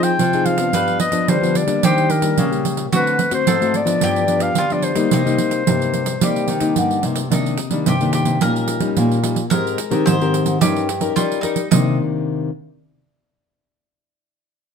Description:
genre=samba and choro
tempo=109 BPM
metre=4/4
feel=straight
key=C minor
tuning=A4 = 442 Hz
part: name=warm clarinet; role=melody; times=0.0-6.8 s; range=Bb4 to G5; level=-20 LUFS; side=left 2 dB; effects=none
part: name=bowl-back mandolin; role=second line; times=0.0-12.0 s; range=Eb4 to C5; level=-26 LUFS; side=left 1 dB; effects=none
part: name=nylon-string guitar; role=accompaniment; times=0.0-12.5 s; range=G2 to Bb4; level=-20 LUFS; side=left 4 dB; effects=none
part: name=nylon-string guitar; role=bass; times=0.0-12.0 s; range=G2 to G3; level=-22 LUFS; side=equal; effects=none
part: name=pandeiro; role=percussion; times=0.0-11.8 s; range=none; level=-21 LUFS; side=right 8 dB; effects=none
room=moderate studio reverb, RT60 0.7 s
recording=minimal, uncompressed stereo recording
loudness=-16 LUFS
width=side -6 dB against mid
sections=0.0-7.3 A section; 7.3-11.7 B section; 11.7-13.9 C section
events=none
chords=0.0 Fm7; 0.7 G7; 1.8 Ebmaj7; 2.9 D7; 4.0 G7; 5.1 Cm9; 8.4 Eb7/Bb; 9.5 Abmaj9; 10.6 Eb7/G; 11.7 Cm9

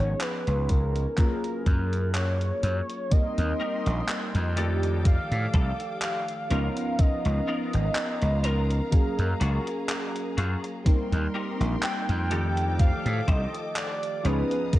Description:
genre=vaporwave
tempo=62 BPM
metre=4/4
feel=swing 54% on 16ths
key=Eb major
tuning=A4 = 440 Hz
part: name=warm velvety synth lead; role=melody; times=0.0-14.8 s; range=Bb4 to G5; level=-32 LUFS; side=equal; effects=chorus, cassette tape, tape echo
part: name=warbly lo-fi synth keys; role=accompaniment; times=0.0-14.8 s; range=Eb3 to F5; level=-32 LUFS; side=equal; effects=wide subtle chorus, vintage 12-bit sampler grit, tape echo
part: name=gritty slap bass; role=bass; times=0.0-14.8 s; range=Ab1 to A2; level=-25 LUFS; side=equal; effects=overdrive
part: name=gated 80s digital drum machine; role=drums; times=0.2-14.8 s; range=handclaps, hi-hat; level=-34 LUFS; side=equal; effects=gated reverb, vintage 12-bit sampler grit
part: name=electronic kick drum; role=drums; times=0.7-14.8 s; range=none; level=-21 LUFS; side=equal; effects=vintage 12-bit sampler grit
part: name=clear studio string section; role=sustained chords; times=3.1-14.8 s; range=Cb4 to Eb6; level=-40 LUFS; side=equal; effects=none
part: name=semi-hollow electric guitar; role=riff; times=3.6-14.8 s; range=Bb3 to C5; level=-38 LUFS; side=left 3 dB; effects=ensemble chorus, tape echo
room=light reverb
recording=cassette tape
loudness=-24 LUFS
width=side -15 dB against mid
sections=0.0-3.1 A section; 3.1-14.8 B section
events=none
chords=0.0 Db9; 1.2 Gbmaj9; 3.1 Eb6; 4.6 F13; 6.5 Db13; 8.9 Gbmaj9; 10.9 Eb6; 12.3 F13; 14.2 Db13

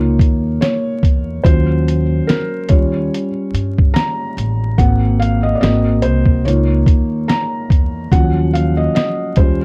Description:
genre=lo-fi hip hop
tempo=72 BPM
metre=4/4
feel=swing 57% on 16ths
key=Eb dorian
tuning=A4 = 440 Hz
part: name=felt-muted upright piano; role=accompaniment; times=0.0-9.6 s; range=F3 to Bb5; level=-20 LUFS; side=equal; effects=cassette tape, low-pass filter
part: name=upright bass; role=bass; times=0.0-9.6 s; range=Ab1 to G2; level=-19 LUFS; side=equal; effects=none
part: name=lo-fi sampler-style drum kit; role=drums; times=0.2-9.6 s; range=hi-hat, kick drum, snare drum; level=-16 LUFS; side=equal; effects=none
room=light reverb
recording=dark, warm production, vinyl crackle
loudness=-15 LUFS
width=mono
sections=0.0-9.6 A section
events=felt piano solo 0.0-9.6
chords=0.0 Db69; 1.4 Ebm7; 2.7 Eb7; 4.8 Ab7; 6.4 Db69; 8.1 Ebm7

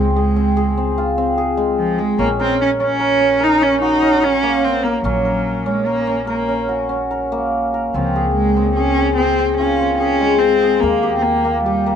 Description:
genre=contemporary instrumental, chamber music in an uneven meter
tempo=146 BPM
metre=7/4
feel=straight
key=unclear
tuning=A4 = 440 Hz
part: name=warm cello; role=melody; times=0.0-12.0 s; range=F3 to Eb4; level=-18 LUFS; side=right 2 dB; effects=none
part: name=cimbalom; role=arpeggios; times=0.0-12.0 s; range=Ab3 to Bb4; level=-17 LUFS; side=left 2 dB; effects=none
part: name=upright bass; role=bass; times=0.0-12.0 s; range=Bb1 to Eb2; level=-25 LUFS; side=equal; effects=none
room=light reverb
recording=nothing above 10.4 kHz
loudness=-14 LUFS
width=side -8 dB against mid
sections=0.0-7.9 A section; 7.9-12.0 B section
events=none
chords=0.0 Dbmaj7; 2.2 Gb/Bb; 7.9 Dbmaj7; 10.8 Eb

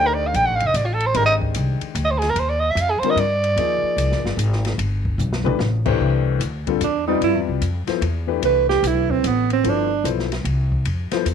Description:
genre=modal jazz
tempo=148 BPM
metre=3/4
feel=swing 65% on 8ths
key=C major from 6.0 s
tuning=A4 = 444 Hz
part: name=growling soprano saxophone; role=melody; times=0.0-4.4 s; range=F4 to G5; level=-19 LUFS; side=right 2 dB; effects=none
part: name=warm grand piano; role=accompaniment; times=0.0-11.3 s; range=C2 to D5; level=-24 LUFS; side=left 14 dB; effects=none
part: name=upright bass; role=bass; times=0.0-11.3 s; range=F1 to G2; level=-22 LUFS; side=left 1 dB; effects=none
part: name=open jazz drum kit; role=drums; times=0.3-11.3 s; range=crash cymbal, hi-hat, kick drum, ride cymbal, snare drum, toms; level=-29 LUFS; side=left 1 dB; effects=none
part: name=breathy alto saxophone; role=second line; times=6.8-10.1 s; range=B3 to B4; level=-19 LUFS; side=right 11 dB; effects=none
room=light reverb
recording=1960s-style stereo with parts hard left and right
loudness=-18 LUFS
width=side -7 dB against mid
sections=0.0-6.0 A section; 6.0-11.3 A section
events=soprano saxophone solo 0.0-6.0; drum fill 5.2-5.6; alto saxophone solo 6.0-11.3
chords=0.0 Bbmaj9 (rootless); 1.2 Abmaj9; 4.8 Gadd9; 6.0 Cmaj9

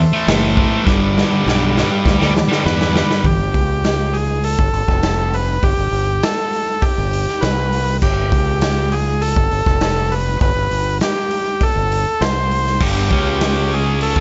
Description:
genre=garage rock duo or trio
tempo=100 BPM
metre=4/4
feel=straight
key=G major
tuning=A4 = 441 Hz
part: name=combo organ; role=sustained chords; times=0.0-3.2, 13.1-14.2 s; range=G#3 to E5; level=-28 LUFS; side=equal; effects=none
part: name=growling fingered electric bass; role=bass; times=0.0-14.2 s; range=F1 to E2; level=-22 LUFS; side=equal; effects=overdrive
part: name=thick fuzz guitar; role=riff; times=0.1-3.2, 12.8-14.2 s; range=G2 to C#4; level=-19 LUFS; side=equal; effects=distortion
part: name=raw garage drum kit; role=drums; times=0.3-14.2 s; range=crash cymbal, hi-hat, kick drum, snare drum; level=-22 LUFS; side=equal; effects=none
part: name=overdriven combo organ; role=melody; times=2.7-14.2 s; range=G4 to C5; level=-22 LUFS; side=equal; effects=none
room=little or no reverb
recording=nothing above 7.9 kHz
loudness=-17 LUFS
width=mono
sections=0.0-3.2 A section; 3.2-14.2 B section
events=drum fill 0.9-3.2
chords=0.0 Am; 0.9 G; 3.2 N.C.; 3.5 A7/C# (rootless); 4.6 Gsus2; 4.9 F; 5.6 Gsus2; 7.4 N.C.; 8.3 A7/C# (rootless); 9.4 Gsus2; 9.7 F; 10.4 G; 12.2 N.C.; 12.8 G5; 13.1 C#5

